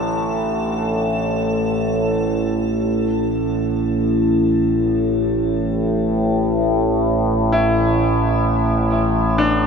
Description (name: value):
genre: dark ambient drone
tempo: free time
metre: none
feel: none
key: unclear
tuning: A4 = 444 Hz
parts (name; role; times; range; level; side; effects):
- bright baby grand piano; arpeggios; 0.0-9.7 s; D3 to E4; -25 LUFS; equal; diffuse ambient delay, shimmer reverb
- overtone-sweeping drone; drone; 0.0-9.7 s; A1 to A2; -17 LUFS; equal; chorus, built-in reverb
- icy glass pad; texture; 0.0-2.9 s; A4; -28 LUFS; right 3 dB; chorus, built-in reverb, shimmer reverb
room: wet huge ambient reverb, RT60 8.8 s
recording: none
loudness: -16 LUFS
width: side -6 dB against mid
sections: 0.0-2.9 A section; 2.9-9.7 B section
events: none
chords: 0.0 Asus4